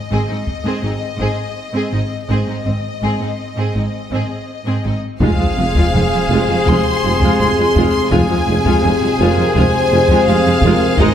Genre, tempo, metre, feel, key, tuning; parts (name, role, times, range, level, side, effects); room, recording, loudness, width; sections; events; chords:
cinematic, epic orchestral film score; 83 BPM; 4/4; straight; F minor; A4 = 440 Hz
clear symphonic violin section; melody; 0.0-11.1 s; Eb5 to C6; -23 LUFS; left 3 dB
rich symphonic violin section; second line; 0.1-11.1 s; C4 to C5; -24 LUFS; left 2 dB
warm symphonic viola section; accompaniment; 0.1-11.1 s; Ab3 to F4; -21 LUFS; right 1 dB
rich symphonic cello section; bass; 0.1-11.1 s; F2 to Ab2; -22 LUFS; right 1 dB
rich symphonic double bass section; bass; 0.1-11.1 s; F1 to Ab1; -22 LUFS; right 1 dB
taiko ensemble; drums; 0.5-0.8, 5.2-11.1 s; -19 LUFS; left 1 dB
mellow French horn section; sustained chords; 0.8-11.1 s; Ab3 to C5; -21 LUFS; left 4 dB
clear trombone section; sustained chords; 5.2-11.1 s; C3 to C4; -23 LUFS; right 1 dB
clear trumpet section; stabs; 5.2-11.1 s; Ab4; -21 LUFS; right 2 dB
mellow tuba; bass; 5.2-11.1 s; F1 to Ab1; -22 LUFS; right 2 dB
sub drop; sound effects; 5.3-8.1 s; -27 LUFS; equal
wet scoring stage reverb, RT60 2.0 s; -13 LUFS; side -9 dB against mid
0.0-5.2 A section; 5.2-11.1 B section
build-up 0.0-5.2; impact 5.2-8.1
0.0 Ab; 5.2 Fm